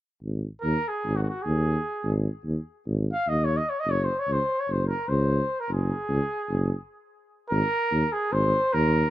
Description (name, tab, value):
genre	balkan folk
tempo	free time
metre	none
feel	none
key	Ab mixolydian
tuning	A4 = 441 Hz
part	mellow tuba	bass	0.2-9.1 s	Gb1 to Eb2	-25 LUFS	equal	none
part	mellow trumpet	melody	0.6-9.1 s	Gb4 to F5	-26 LUFS	equal	none
room	small room ambience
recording	rough home demo mix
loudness	-24 LUFS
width	side -14 dB against mid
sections	0.2-7.5 A section; 7.5-9.1 B section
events	break 6.9-7.5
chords	0.2 Ab5; 3.9 Gb5; 7.5 Ab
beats	free time